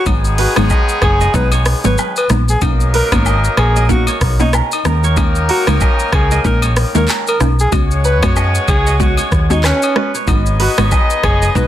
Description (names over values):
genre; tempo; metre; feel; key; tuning
afrobeats; 94 BPM; 4/4; swing 58% on 16ths; G# minor; A4 = 440 Hz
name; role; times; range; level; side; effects
clear alto saxophone; melody; 0.0-11.7 s; C#4 to B4; -20 LUFS; equal; ping-pong delay
kora; riff; 0.0-11.7 s; F#4 to D#5; -23 LUFS; right 8 dB; ping-pong delay
clear horn section; second line; 0.1-11.7 s; D#3 to D#5; -21 LUFS; left 2 dB; none
hollow square pluck; accompaniment; 0.1-11.7 s; F#3 to F#4; -20 LUFS; equal; chorus
hollow-body short-scale fingered electric bass; bass; 0.1-11.7 s; F#1 to F#2; -15 LUFS; equal; none
afro-pop drum kit; drums; 0.1-11.7 s; handclaps, hi-hat, kick drum, rim click, shaker; -17 LUFS; equal; soft clipping on snare
agogo bells and woodblock; percussion; 0.1-11.4 s; none; -24 LUFS; left 5 dB; none
room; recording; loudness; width
studio reverb; dense, heavily limited modern master; -11 LUFS; side -12 dB against mid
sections
0.1-11.7 A section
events
none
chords
0.1 G#m7; 2.6 Bmaj9; 4.9 D#7sus4; 7.7 C#7sus4; 10.3 G#m7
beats
| 0.06 0.70 1.34 1.98 | 2.62 3.25 3.89 4.53 | 5.17 5.81 6.45 7.08 | 7.72 8.36 9.00 9.64 | 10.28 10.91 11.55